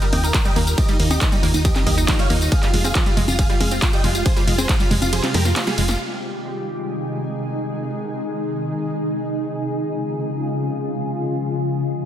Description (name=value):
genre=uplifting trance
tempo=138 BPM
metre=4/4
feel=straight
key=Ab major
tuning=A4 = 439 Hz
part: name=big supersaw lead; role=melody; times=0.0-6.0 s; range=Eb4 to G5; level=-25 LUFS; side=right 1 dB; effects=sidechain pumping, dub echo
part: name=shimmering ambient pad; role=sustained chords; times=0.0-12.1 s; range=C3 to Ab4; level=-25 LUFS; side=left 1 dB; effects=chorus, built-in reverb, sidechain pumping
part: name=wide unison pluck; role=arpeggios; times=0.0-5.8 s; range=F3 to Eb4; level=-27 LUFS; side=right 2 dB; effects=sidechain pumping, dub echo
part: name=punchy analog drum machine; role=drums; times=0.0-6.0 s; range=congas, handclaps, hi-hat, ride cymbal, snare drum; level=-24 LUFS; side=equal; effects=none
part: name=tambourine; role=percussion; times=0.0-6.0 s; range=none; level=-30 LUFS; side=left 3 dB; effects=none
part: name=solid FM bass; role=bass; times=0.1-6.0 s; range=F1 to F2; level=-21 LUFS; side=equal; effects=tube saturation, sidechain pumping
part: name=electronic kick drum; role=drums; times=0.3-4.8 s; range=none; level=-19 LUFS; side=equal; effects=none
room=light reverb, digital ambience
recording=dense, heavily limited modern master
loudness=-18 LUFS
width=side -11 dB against mid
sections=0.0-6.0 A section; 6.0-12.1 B section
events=drop 0.0-6.0; kick drops out 5.1-6.0; drum fill 5.3-6.0; band accent 5.9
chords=0.0 Ebadd9; 2.5 Fmadd9; 6.0 Ab; 9.5 Db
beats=0.34 | 0.78 1.21 1.65 2.08 | 2.52 2.95 3.39 3.82 | 4.26 4.69 5.13 5.56 | 6.00 6.43 6.87 7.30 | 7.74 8.17 8.61 9.04 | 9.47 9.91 10.34 10.78 | 11.21 11.65